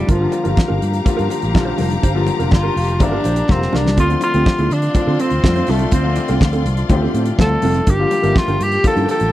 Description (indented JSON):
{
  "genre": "disco",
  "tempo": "123 BPM",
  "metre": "4/4",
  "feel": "straight",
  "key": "unclear",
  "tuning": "A4 = 441 Hz",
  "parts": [
    { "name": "breathy tenor saxophone", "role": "melody", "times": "0.0-9.3 s", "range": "F3 to A4", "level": "-20 LUFS", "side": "equal", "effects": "none" },
    { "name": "warm grand piano", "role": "accompaniment", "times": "0.0-9.3 s", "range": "D3 to G4", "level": "-23 LUFS", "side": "left 4 dB", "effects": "none" },
    { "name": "clear symphonic string section", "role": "sustained chords", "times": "0.0-9.3 s", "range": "F4 to C6", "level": "-26 LUFS", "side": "left 4 dB", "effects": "none" },
    { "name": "mellow electric guitar", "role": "accompaniment", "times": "0.1-9.2 s", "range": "C4 to C5", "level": "-24 LUFS", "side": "right 4 dB", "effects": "none" },
    { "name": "fingered electric bass", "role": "bass", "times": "0.1-9.3 s", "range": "F1 to D3", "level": "-19 LUFS", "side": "equal", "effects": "none" },
    { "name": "damped 70s drum kit", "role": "drums", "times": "0.1-9.3 s", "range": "hi-hat, kick drum, snare drum", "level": "-16 LUFS", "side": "equal", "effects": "none" },
    { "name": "congas", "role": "percussion", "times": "0.3-9.2 s", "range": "none", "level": "-26 LUFS", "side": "left 5 dB", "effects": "none" }
  ],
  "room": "little or no reverb",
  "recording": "dry, close 1970s-style studio recording",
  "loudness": "-14 LUFS",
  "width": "side -14 dB against mid",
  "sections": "0.0-9.3 A section",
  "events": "tenor saxophone solo 0.0-9.3; drum fill 3.5-4.0",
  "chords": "0.1 Gm7; 4.0 Dm7; 7.9 Gm7"
}